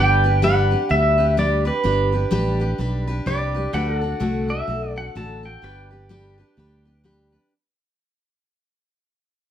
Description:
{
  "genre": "country",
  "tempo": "127 BPM",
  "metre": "4/4",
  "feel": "swing 60% on 8ths",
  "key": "G major",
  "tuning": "A4 = 440 Hz",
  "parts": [
    { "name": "pedal steel guitar", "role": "melody", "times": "0.0-7.0 s", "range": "B4 to A5", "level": "-22 LUFS", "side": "equal", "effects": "slapback echo" },
    { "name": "picked steel-string acoustic guitar", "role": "accompaniment", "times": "0.0-7.5 s", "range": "D3 to B4", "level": "-25 LUFS", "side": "left 1 dB", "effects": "none" },
    { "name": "pedal steel guitar", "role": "sustained chords", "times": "0.0-7.5 s", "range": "F#4 to D5", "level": "-32 LUFS", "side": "right 4 dB", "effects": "none" },
    { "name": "fingered electric bass", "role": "bass", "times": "0.0-7.4 s", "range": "G1 to D2", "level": "-22 LUFS", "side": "right 1 dB", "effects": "none" }
  ],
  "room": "moderate studio ambience, RT60 0.5 s",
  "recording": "none",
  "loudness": "-18 LUFS",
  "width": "side -10 dB against mid",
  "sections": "0.0-7.5 A section",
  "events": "fade-out 0.0-7.5",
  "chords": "0.0 G; 3.7 D; 5.6 G",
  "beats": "0.43 0.90 1.37 | 1.85 2.32 2.79 3.27 | 3.74 4.21 4.68 5.16 | 5.63 6.10 6.58 7.05"
}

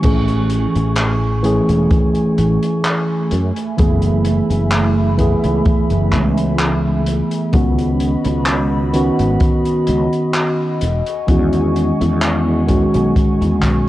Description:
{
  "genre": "vaporwave",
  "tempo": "64 BPM",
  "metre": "4/4",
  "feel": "swing 53% on 16ths",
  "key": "A lydian",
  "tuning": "A4 = 440 Hz",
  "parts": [
    { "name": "mellow tine electric piano", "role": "accompaniment", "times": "0.0-13.9 s", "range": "D#3 to G#4", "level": "-17 LUFS", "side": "equal", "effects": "lush chorus, analog delay" },
    { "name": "warbly tape-like pad", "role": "sustained chords", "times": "0.0-13.9 s", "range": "A3 to C#6", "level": "-25 LUFS", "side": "right 1 dB", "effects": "chorus, built-in reverb" },
    { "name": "sustaining fretless electric bass", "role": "bass", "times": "0.0-13.9 s", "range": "E1 to F#2", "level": "-18 LUFS", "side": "equal", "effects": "tube saturation, ensemble chorus" },
    { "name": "kick drum", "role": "drums", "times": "0.0-13.8 s", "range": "none", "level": "-17 LUFS", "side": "equal", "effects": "none" },
    { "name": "open jazz drum kit", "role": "drums", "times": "0.0-13.8 s", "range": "crash cymbal, handclaps, hi-hat", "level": "-24 LUFS", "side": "equal", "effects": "none" }
  ],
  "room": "little or no reverb",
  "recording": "worn, warbling old tape, cassette tape, warbly pitch drift",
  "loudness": "-14 LUFS",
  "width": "side -15 dB against mid",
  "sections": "0.0-13.9 A section",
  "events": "none",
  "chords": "0.0 Amaj7; 3.3 F#m11; 7.5 C#9sus4; 10.8 Emaj13",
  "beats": "| 0.04 0.97 1.91 2.85 | 3.79 4.72 5.66 6.60 | 7.54 8.47 9.41 10.35 | 11.29 12.22 13.16"
}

